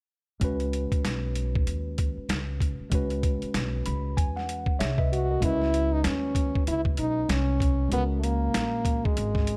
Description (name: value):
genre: hip hop, jazz-hop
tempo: 96 BPM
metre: 4/4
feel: swing 61% on 16ths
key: C# dorian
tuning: A4 = 440 Hz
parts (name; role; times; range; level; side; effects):
- tine electric piano; accompaniment; 0.4-9.6 s; G#3 to B5; -36 LUFS; equal; overdrive
- upright bass; bass; 0.4-9.6 s; G#1 to E2; -32 LUFS; equal; none
- boom bap sampler-style drum kit; drums; 0.4-9.6 s; hi-hat, kick drum, snare drum; -30 LUFS; equal; none
- clear French horn; melody; 5.1-9.6 s; G#3 to F#4; -30 LUFS; equal; none
room: light reverb, studio ambience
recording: none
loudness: -27 LUFS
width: mono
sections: 0.4-5.4 A section; 5.4-9.6 B section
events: tine electric piano fill 3.5-5.4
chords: 0.4 C#m9; 5.4 C#sus2